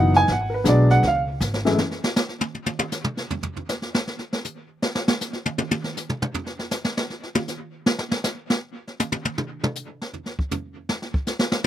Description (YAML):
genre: jazz piano trio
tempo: 158 BPM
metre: 4/4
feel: swing 64% on 8ths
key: unclear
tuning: A4 = 439 Hz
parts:
  - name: warm baby grand piano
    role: melody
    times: 0.0-1.8 s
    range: F#2 to G#5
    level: -18 LUFS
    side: equal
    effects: slapback echo
  - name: upright bass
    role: bass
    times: 0.0-1.8 s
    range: F#1 to C#2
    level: -20 LUFS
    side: equal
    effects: none
  - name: jazz brush drum kit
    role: drums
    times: 0.1-11.7 s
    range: brushed snare drum, hi-hat, kick drum, snare drum, toms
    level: -24 LUFS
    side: equal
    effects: none
room: little or no reverb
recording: recorded outdoors, with no room sound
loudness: -22 LUFS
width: side -11 dB against mid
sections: 0.0-1.8 A section; 1.8-11.7 A section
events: grand piano solo 0.0-1.8; drum fill 1.4-1.8; drum solo 1.8-11.7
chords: 0.3 G#m7b5; 1.0 C#5; 1.8 N.C.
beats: | 0.27 0.65 1.03 1.41 | 1.79 2.17 2.55 2.93 | 3.31 3.69 4.07 4.45 | 4.83 5.21 5.58 5.96 | 6.34 6.72 7.10 7.48 | 7.86 8.24 8.62 9.00 | 9.38 9.76 10.14 10.52 | 10.89 11.27 11.65